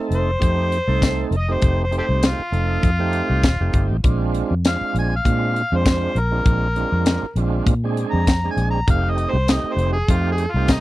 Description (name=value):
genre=straight-eighth soul blues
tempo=99 BPM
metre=4/4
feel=swing 56% on 16ths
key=F mixolydian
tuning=A4 = 440 Hz
part: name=tonewheel organ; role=accompaniment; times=0.0-10.8 s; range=Ab3 to A4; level=-25 LUFS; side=right 5 dB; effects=slow rotary speaker, overdrive
part: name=vintage muted fingered electric bass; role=bass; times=0.1-10.8 s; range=Eb1 to Bb2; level=-21 LUFS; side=equal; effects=none
part: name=tight funk drum kit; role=drums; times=0.1-10.8 s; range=hi-hat, kick drum, snare drum, tambourine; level=-18 LUFS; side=left 1 dB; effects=none
part: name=overdriven harmonica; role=melody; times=0.2-10.8 s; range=Eb4 to Bb5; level=-24 LUFS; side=left 1 dB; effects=none
room=little or no reverb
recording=dry, close 1970s-style studio recording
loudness=-17 LUFS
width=side -17 dB against mid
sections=0.0-10.8 A section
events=harmonica solo 0.0-10.8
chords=0.0 F9; 4.1 Bb9; 8.9 F9